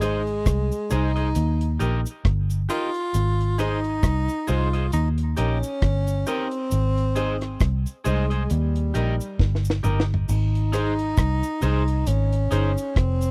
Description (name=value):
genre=roots reggae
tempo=67 BPM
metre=4/4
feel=swing 58% on 16ths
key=Ab major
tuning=A4 = 440 Hz
part: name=warm tenor saxophone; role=melody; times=0.0-13.3 s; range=G3 to F4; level=-30 LUFS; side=equal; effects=tape echo
part: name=electric guitar at the edge of break-up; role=accompaniment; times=0.0-12.7 s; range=Eb4 to Eb5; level=-34 LUFS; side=equal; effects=tape echo
part: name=dark upright piano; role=stabs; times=0.0-12.7 s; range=Eb4 to C5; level=-33 LUFS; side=equal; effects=none
part: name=vintage muted fingered electric bass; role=bass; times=0.0-13.3 s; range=F1 to Eb2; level=-25 LUFS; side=equal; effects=none
part: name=deep reggae drum kit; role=drums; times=0.0-13.3 s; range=crash cymbal, hi-hat, kick drum, rim click, snare drum, toms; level=-26 LUFS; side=equal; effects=none
part: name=cabasa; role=percussion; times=0.0-13.3 s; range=none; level=-44 LUFS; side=equal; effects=none
room=little or no reverb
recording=dry, close 1970s-style studio recording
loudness=-23 LUFS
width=mono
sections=0.0-10.3 A section; 10.3-13.3 B section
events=drum fill 9.4-10.3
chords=0.0 Ab; 1.4 Eb; 3.1 Ab; 4.9 Eb; 6.7 Ab; 8.5 Eb; 10.3 Ab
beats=0.46 1.36 2.25 | 3.14 4.04 4.93 5.82 | 6.71 7.61 8.50 9.39 | 10.28 11.18 12.07 12.96